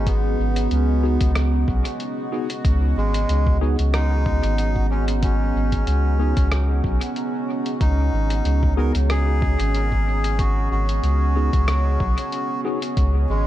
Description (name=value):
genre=ambient dub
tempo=93 BPM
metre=4/4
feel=swing 54% on 16ths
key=unclear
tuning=A4 = 440 Hz
part: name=melodica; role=melody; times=0.0-13.5 s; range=Ab3 to Bb4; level=-28 LUFS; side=left 1 dB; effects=dub echo
part: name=deep dark ambient pad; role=sustained chords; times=0.0-13.5 s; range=Cb4 to Gb5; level=-27 LUFS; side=right 2 dB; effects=chorus, built-in reverb
part: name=soft dub sub bass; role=bass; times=0.0-13.5 s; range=Ab1 to Db2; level=-20 LUFS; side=equal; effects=none
part: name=bubbling stepped-filter texture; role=texture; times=0.0-13.5 s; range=Gb3 to Gb4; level=-34 LUFS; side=left 1 dB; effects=chorus, built-in reverb
part: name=electronic kick drum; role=drums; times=0.1-13.1 s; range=none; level=-23 LUFS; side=equal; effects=none
part: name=lo-fi sampler-style drum kit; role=drums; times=0.1-13.1 s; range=hi-hat, rim click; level=-31 LUFS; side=left 1 dB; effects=dub echo
part: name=tine electric piano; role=stabs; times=1.0-12.8 s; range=Cb4 to Ab4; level=-30 LUFS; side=equal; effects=medium stereo tremolo, dub echo
room=little or no reverb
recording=none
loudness=-18 LUFS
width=side -13 dB against mid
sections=0.0-13.5 A section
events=none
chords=0.0 Db7sus4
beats=| 0.07 0.71 1.36 2.00 | 2.65 3.29 3.94 4.58 | 5.23 5.87 6.52 7.16 | 7.81 8.45 9.10 9.74 | 10.39 11.03 11.68 12.32 | 12.97